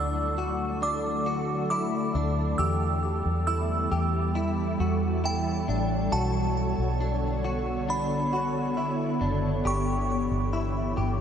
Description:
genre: dream pop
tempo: 68 BPM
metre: 4/4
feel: straight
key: unclear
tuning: A4 = 440 Hz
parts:
  - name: glassy synth bell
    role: melody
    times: 0.0-11.2 s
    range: G5 to E6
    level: -32 LUFS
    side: right 2 dB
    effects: chorus, tremolo, ping-pong delay
  - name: ethereal airy pad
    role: sustained chords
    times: 0.0-11.2 s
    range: D3 to C#5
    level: -29 LUFS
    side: equal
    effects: ensemble chorus, built-in reverb
  - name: direct-recorded clean electric guitar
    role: arpeggios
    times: 0.0-11.2 s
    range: D4 to G4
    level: -32 LUFS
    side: left 2 dB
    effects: ensemble chorus, ping-pong delay
  - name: vintage muted fingered electric bass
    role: bass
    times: 0.0-11.2 s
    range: F#1 to E2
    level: -29 LUFS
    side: equal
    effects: none
room: wet huge ambient reverb, RT60 8.1 s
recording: dreamy mix soaked in reverb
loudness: -25 LUFS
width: side -8 dB against mid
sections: 0.0-11.2 A section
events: none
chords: 0.0 D; 2.6 Emadd9; 6.1 Bmadd9; 9.7 G6

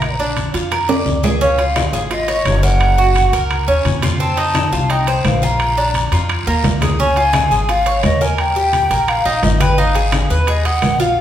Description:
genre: latin, Cuban son and guajira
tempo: 172 BPM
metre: 4/4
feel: straight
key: unclear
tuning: A4 = 440 Hz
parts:
  - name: breathy concert flute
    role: melody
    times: 0.0-11.2 s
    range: Db5 to Bb5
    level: -18 LUFS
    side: equal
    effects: none
  - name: Cuban tres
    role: arpeggios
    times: 0.0-11.2 s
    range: Bb3 to Eb5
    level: -19 LUFS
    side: right 2 dB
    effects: none
  - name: upright bass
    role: bass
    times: 0.0-11.2 s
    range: Gb1 to F2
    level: -19 LUFS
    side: left 1 dB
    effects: none
  - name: claves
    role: percussion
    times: 0.0-11.0 s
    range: none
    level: -34 LUFS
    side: left 2 dB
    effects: none
  - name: congas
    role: percussion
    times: 0.0-11.0 s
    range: none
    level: -23 LUFS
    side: left 1 dB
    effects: none
  - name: guiro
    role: percussion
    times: 0.0-11.2 s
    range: none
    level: -30 LUFS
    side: left 4 dB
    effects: none
  - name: timbales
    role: percussion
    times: 0.0-11.0 s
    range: none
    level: -24 LUFS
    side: right 3 dB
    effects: none
room: wet large studio reverb, RT60 1.2 s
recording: band playing live in one room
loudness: -13 LUFS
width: side -11 dB against mid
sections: 0.0-1.4 A section; 1.4-11.2 B section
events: drum fill 0.9-1.4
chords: 0.0 Bb; 1.4 Db; 2.8 Gb; 4.2 F7; 5.6 Bb; 7.0 Db; 8.4 Eb; 9.8 Abm

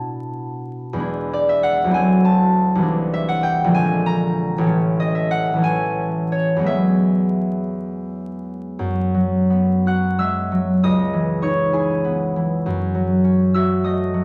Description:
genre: classical, solo harp piece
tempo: 54-70 BPM (dotted quarters)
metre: 6/8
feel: rubato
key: F# dorian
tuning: A4 = 440 Hz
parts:
  - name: concert harp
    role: solo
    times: 0.0-14.2 s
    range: A1 to F#6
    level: -20 LUFS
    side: equal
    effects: none
room: moderate stone room reverb, RT60 1.0 s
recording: vinyl crackle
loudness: -19 LUFS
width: mono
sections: 0.0-8.8 A section; 8.8-14.2 B section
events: none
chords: 0.0 Bm11; 1.0 E7; 1.9 D9; 2.8 C9; 3.7 A#9; 4.7 Amaj7; 6.7 Eadd9; 8.8 F#9sus4; 10.8 C#m9; 12.7 F#m6

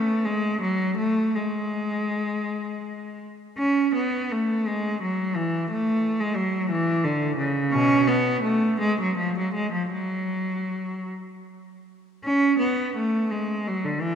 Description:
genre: classical, baroque-style suite movement for unaccompanied cello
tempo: 50-60 BPM (dotted quarters)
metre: 6/8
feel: rubato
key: F# minor from 7.7 s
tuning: A4 = 444 Hz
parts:
  - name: clear cello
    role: solo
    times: 0.0-14.2 s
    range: B2 to C#4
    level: -22 LUFS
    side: equal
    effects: none
room: wet church reverb, RT60 2.8 s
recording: none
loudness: -22 LUFS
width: side -8 dB against mid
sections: 0.0-12.2 A section; 12.2-14.2 A section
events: none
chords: none

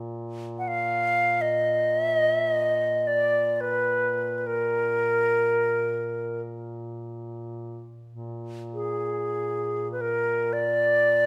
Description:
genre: caucasian folk, Caucasian lament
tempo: free time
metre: none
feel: none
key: unclear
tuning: A4 = 440 Hz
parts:
  - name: mellow duduk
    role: drone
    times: 0.0-11.3 s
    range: Bb2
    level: -38 LUFS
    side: equal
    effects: none
  - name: bright wooden flute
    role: melody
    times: 0.6-11.3 s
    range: Ab4 to Gb5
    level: -25 LUFS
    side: equal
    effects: none
room: moderate scoring stage reverb, RT60 1.5 s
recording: none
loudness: -25 LUFS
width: mono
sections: 0.0-8.1 A section; 8.1-11.3 A section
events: none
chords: none

